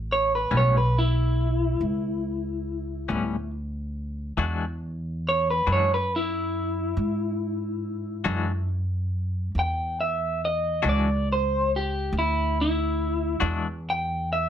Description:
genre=blues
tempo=46 BPM (dotted quarters)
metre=12/8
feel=straight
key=unclear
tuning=A4 = 437 Hz
part: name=upright bass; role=bass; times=0.0-14.5 s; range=A1 to G#2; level=-27 LUFS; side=equal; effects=none
part: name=electric guitar through a small old amp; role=melody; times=0.1-14.5 s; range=E4 to G5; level=-26 LUFS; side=equal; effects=none
part: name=semi-hollow electric guitar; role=accompaniment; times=0.5-13.7 s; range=A2 to F#4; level=-27 LUFS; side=left 5 dB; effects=tremolo
room=light reverb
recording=none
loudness=-23 LUFS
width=side -9 dB against mid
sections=0.0-14.5 A section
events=clean electric guitar solo 0.0-14.5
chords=0.0 Aadd9; 4.4 E9

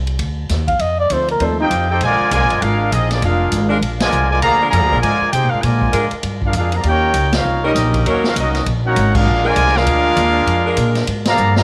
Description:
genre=jazz, big band swing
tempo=198 BPM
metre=4/4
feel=swing 61% on 8ths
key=unclear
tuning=A4 = 440 Hz
part: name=upright bass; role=bass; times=0.0-11.6 s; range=F1 to C3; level=-21 LUFS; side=equal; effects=none
part: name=swinging big-band drum kit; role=drums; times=0.1-11.6 s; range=crash cymbal, hi-hat, kick drum, ride cymbal, snare drum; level=-26 LUFS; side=equal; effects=none
part: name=trumpet with bucket mute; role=melody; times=0.7-1.7 s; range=Eb4 to F5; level=-20 LUFS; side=equal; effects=none
part: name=clear baby grand piano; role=accompaniment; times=1.1-1.6 s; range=F3 to C5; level=-26 LUFS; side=equal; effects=none
part: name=warm trumpet section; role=melody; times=1.6-11.6 s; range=Bb3 to Bb5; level=-19 LUFS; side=equal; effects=none
part: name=bright trombone section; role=second line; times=1.6-11.6 s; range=D3 to G4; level=-25 LUFS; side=equal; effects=none
part: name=mellow saxophone section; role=sustained chords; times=2.3-11.1 s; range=Gb3 to Bb4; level=-25 LUFS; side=equal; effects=none
room=light reverb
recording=none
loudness=-16 LUFS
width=mono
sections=0.0-2.0 A section; 2.0-11.6 B section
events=muted trumpet solo 0.0-2.0; band accent 4.0, 7.3, 9.1, 11.2; drum fill 11.4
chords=0.0 N.C.; 0.8 F7; 2.0 Bb7; 6.8 Eb7; 8.1 Ebm7; 9.3 Bb7

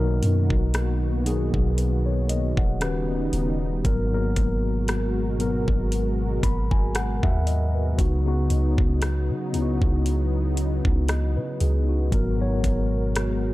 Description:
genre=contemporary R&B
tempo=58 BPM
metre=4/4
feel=swing 54% on 16ths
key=G# minor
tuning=A4 = 438 Hz
part: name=mellow tine electric piano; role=accompaniment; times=0.0-13.5 s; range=G#2 to B5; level=-26 LUFS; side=left 2 dB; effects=medium stereo tremolo
part: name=warm analog pad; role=sustained chords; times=0.0-13.5 s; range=B2 to A#4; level=-31 LUFS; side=right 1 dB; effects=chorus, sidechain pumping
part: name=soft 808-style bass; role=bass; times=0.0-13.5 s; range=D#1 to C#3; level=-24 LUFS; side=equal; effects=none
part: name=smooth R&B drum kit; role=drums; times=0.2-13.4 s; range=hi-hat, kick drum, rim click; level=-25 LUFS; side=equal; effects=none
room=little or no reverb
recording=dark, warm production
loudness=-21 LUFS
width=side -17 dB against mid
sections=0.0-13.5 A section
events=tine electric piano fill 5.9-8.0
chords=0.0 Bmaj7; 2.8 D#7alt; 3.8 G#m9; 8.0 C#9sus4; 12.1 G#m9

